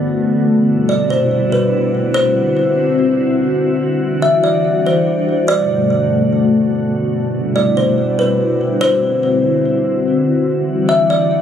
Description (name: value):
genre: hip hop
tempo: 144 BPM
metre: 4/4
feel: half-time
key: C lydian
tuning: A4 = 440 Hz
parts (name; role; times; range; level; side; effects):
- kalimba; melody; 0.0-11.4 s; B4 to E5; -16 LUFS; left 1 dB; ping-pong delay
- glassy FM pad; sustained chords; 0.0-11.4 s; D2 to F#4; -15 LUFS; left 1 dB; ensemble chorus, built-in reverb
room: light reverb, studio reverb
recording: recorded on a phone in the room, studio ambience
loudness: -13 LUFS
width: side -9 dB against mid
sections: 0.5-11.4 A section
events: none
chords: 0.5 Cmaj9#11; 2.1 D7; 3.8 Em9; 5.5 Gmaj9; 7.1 Cmaj9#11; 8.8 D7; 10.5 Em9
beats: 0.06 | 0.48 0.90 1.31 1.73 | 2.15 2.56 2.98 3.40 | 3.81 4.23 4.64 5.06 | 5.48 5.89 6.31 6.73 | 7.14 7.56 7.98 8.39 | 8.81 9.23 9.64 10.06 | 10.48 10.89 11.31